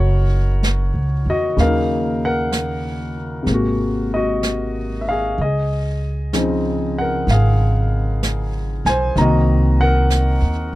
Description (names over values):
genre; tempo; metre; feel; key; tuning
jazz ballad; 63 BPM; 4/4; swing 66% on 8ths; unclear; A4 = 442 Hz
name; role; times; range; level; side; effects
warm concert grand piano; accompaniment; 0.0-10.8 s; C3 to Bb5; -20 LUFS; left 1 dB; none
upright bass; bass; 0.0-10.8 s; F#1 to E2; -19 LUFS; equal; none
jazz brush drum kit; drums; 0.6-10.8 s; brushed snare drum, hi-hat, snare drum; -27 LUFS; right 2 dB; none
room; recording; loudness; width
little or no reverb; dry, close 1970s-style studio recording; -16 LUFS; side -17 dB against mid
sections
0.0-10.8 A section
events
none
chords
0.0 Bmaj9; 1.6 Ebm7; 3.5 Ab9; 5.4 Dbmaj9; 9.2 Cm7b5